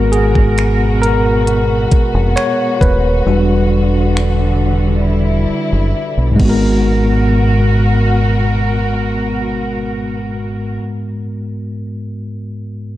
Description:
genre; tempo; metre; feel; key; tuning
contemporary R&B; 67 BPM; 4/4; straight; unclear; A4 = 440 Hz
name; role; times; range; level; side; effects
bell-like tine electric piano; accompaniment; 0.0-12.9 s; G#2 to C#5; -16 LUFS; left 1 dB; medium stereo tremolo
warm studio string section; sustained chords; 0.0-10.8 s; B2 to A#4; -20 LUFS; equal; none
deep dub fingered electric bass; bass; 0.0-10.8 s; D#1 to B1; -15 LUFS; equal; none
trap drum kit; drums; 0.1-6.6 s; crash cymbal, finger snaps, hi-hat, kick drum; -15 LUFS; equal; vintage 12-bit sampler grit
room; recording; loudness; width
digital ambience; dark, warm production, faint mains hum; -12 LUFS; side -14 dB against mid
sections
0.0-6.8 A section; 6.8-10.4 B section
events
tine electric piano solo 0.0-6.8; drum fill 5.1-6.8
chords
0.0 G#m9; 3.3 Em9; 6.4 G#m9

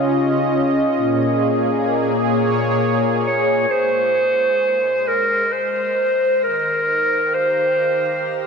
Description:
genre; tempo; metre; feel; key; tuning
ambient; 66 BPM; 3/4; straight; unclear; A4 = 439 Hz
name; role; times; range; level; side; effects
warm analog pad; sustained chords; 0.0-8.5 s; Bb2 to F5; -19 LUFS; equal; chorus, tremolo, shimmer reverb
clear clarinet; melody; 3.3-8.4 s; Bb4 to Db5; -17 LUFS; equal; shimmer reverb, diffuse ambient delay
room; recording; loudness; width
wet huge ambient reverb, RT60 8.7 s; none; -16 LUFS; side -5 dB against mid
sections
0.0-3.7 A section; 3.7-8.5 B section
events
filter sweep on analog synth pad 0.0-3.7; fade-in on analog synth pad 3.7-8.5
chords
0.0 Dbadd9; 1.0 Bbm7; 3.7 Ab; 6.4 Ebadd9

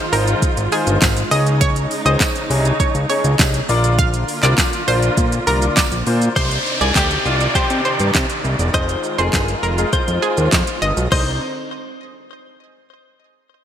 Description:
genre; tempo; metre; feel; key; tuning
dance-pop; 101 BPM; 4/4; straight; C minor; A4 = 442 Hz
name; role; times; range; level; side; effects
clear concert grand piano; accompaniment; 0.0-11.4 s; Db4 to D5; -24 LUFS; left 4 dB; analog chorus, sidechain pumping
warm studio string section; sustained chords; 0.0-11.4 s; C3 to D5; -25 LUFS; right 2 dB; sidechain pumping
analog pluck; melody; 0.1-11.4 s; Ab4 to F5; -23 LUFS; right 3 dB; chorus, sidechain pumping, digital delay
fat analog bass; bass; 0.1-11.4 s; E1 to C3; -19 LUFS; equal; sidechain pumping
deep house drum kit; drums; 0.1-11.3 s; crash cymbal, handclaps, hi-hat, kick drum, shaker, snare drum; -19 LUFS; equal; none
tambourine; percussion; 1.0-5.9 s; none; -32 LUFS; right 8 dB; none
direct-recorded clean electric guitar; melody; 6.4-11.4 s; F4 to C5; -24 LUFS; left 2 dB; analog chorus, digital delay
downlifter; sound effects; 6.4-11.1 s; none; -25 LUFS; equal; none
room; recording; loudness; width
moderate lush hall reverb, RT60 1.9 s; bright 1980s-style digital production; -14 LUFS; side -9 dB against mid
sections
0.0-6.4 A section; 6.4-11.1 B section; 11.1-13.5 C section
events
drop 0.0-6.4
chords
0.0 Fm7; 1.3 Dbsus2; 3.7 Bb; 6.4 Cmadd9; 8.7 Fm7; 11.1 Cmadd9

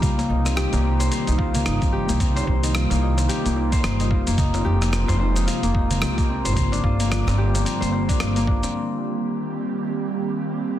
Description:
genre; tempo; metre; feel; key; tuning
organic downtempo; 110 BPM; 4/4; swing 59% on 16ths; C minor; A4 = 440 Hz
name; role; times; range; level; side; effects
airy breathy pad; sustained chords; 0.0-10.8 s; C3 to G4; -28 LUFS; right 3 dB; chorus, sidechain pumping
Celtic harp; arpeggios; 0.0-10.8 s; Bb3 to C5; -25 LUFS; left 3 dB; low-pass filter, digital delay
upright bass; bass; 0.0-8.7 s; F1 to G2; -22 LUFS; equal; sidechain pumping
dusty soul sampler-style drum kit; drums; 0.0-8.7 s; hi-hat, rim click, shaker; -29 LUFS; left 1 dB; low-pass filter on perc, soft clipping on snare, low-pass filter on snare, low-pass filter on hats, low-pass filter on room
electronic kick drum; drums; 0.0-8.6 s; none; -23 LUFS; equal; none
darbuka; percussion; 0.0-8.7 s; none; -31 LUFS; right 2 dB; none
room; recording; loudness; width
light reverb; dense, heavily limited modern master; -19 LUFS; side -12 dB against mid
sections
0.0-8.7 A section; 8.7-10.8 B section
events
none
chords
0.0 Cm; 4.4 Fm7; 6.6 Gm7; 8.7 Cm7

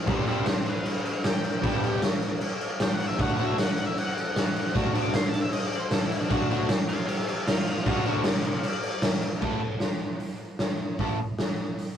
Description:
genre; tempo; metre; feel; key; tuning
garage rock duo or trio; 154 BPM; 4/4; straight; unclear; A4 = 441 Hz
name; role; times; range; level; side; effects
octave-fuzz lead guitar; melody; 0.1-9.0 s; D4 to D6; -34 LUFS; left 1 dB; distortion
overdriven electric guitar; riff; 0.1-11.2 s; G2 to A4; -28 LUFS; equal; none
raw garage drum kit; drums; 0.1-11.9 s; crash cymbal, hi-hat, kick drum, snare drum; -26 LUFS; equal; none
room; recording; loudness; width
light reverb; rough rehearsal-room recording, tube saturation; -24 LUFS; side -9 dB against mid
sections
0.0-9.4 A section; 9.4-12.0 B section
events
none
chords
0.1 G; 3.2 D; 9.4 A

